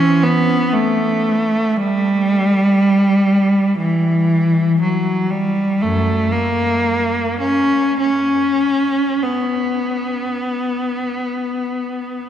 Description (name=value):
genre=classical, free, expressive piece for unaccompanied cello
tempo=free time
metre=none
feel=none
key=unclear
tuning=A4 = 442 Hz
part: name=rich cello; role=solo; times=0.0-12.3 s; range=F#2 to C#4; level=-15 LUFS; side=equal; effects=none
room=wet cathedral reverb, RT60 4.9 s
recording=none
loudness=-15 LUFS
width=side -10 dB against mid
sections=0.0-12.3 A section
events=none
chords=none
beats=free time